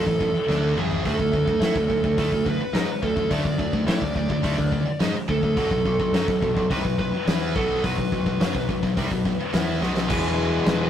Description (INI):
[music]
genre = heavy metal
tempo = 106 BPM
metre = 4/4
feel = straight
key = unclear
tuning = A4 = 441 Hz
[part]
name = lead guitar through a small cranked amp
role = melody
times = 0.0-10.9 s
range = G#4 to D5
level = -26 LUFS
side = right 1 dB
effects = overdrive
[part]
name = heavy high-gain guitar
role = riff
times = 0.0-10.9 s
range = A2 to E4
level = -29 LUFS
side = left 4 dB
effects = distortion
[part]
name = high-gain distorted guitar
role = riff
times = 0.0-10.9 s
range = E2 to E4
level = -29 LUFS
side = right 4 dB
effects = distortion
[part]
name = growling picked electric bass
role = bass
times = 0.0-10.9 s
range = E1 to A2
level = -27 LUFS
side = equal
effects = overdrive
[part]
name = big rock drum kit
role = drums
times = 0.1-10.8 s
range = crash cymbal, hi-hat, kick drum, snare drum, toms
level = -26 LUFS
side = left 1 dB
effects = none
[part]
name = high-gain lead guitar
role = second line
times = 10.1-10.9 s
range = G#4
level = -28 LUFS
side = equal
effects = distortion
[part]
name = fuzz guitar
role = riff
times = 10.1-10.9 s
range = E2 to E3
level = -26 LUFS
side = left 1 dB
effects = distortion
[sound]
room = moderate studio reverb, RT60 0.6 s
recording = rough rehearsal-room recording, tube saturation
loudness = -20 LUFS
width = side -10 dB against mid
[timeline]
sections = 0.0-10.1 A section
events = drum fill 0.5-1.1, 9.8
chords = 0.0 A5; 1.1 D5; 5.6 B5; 10.1 E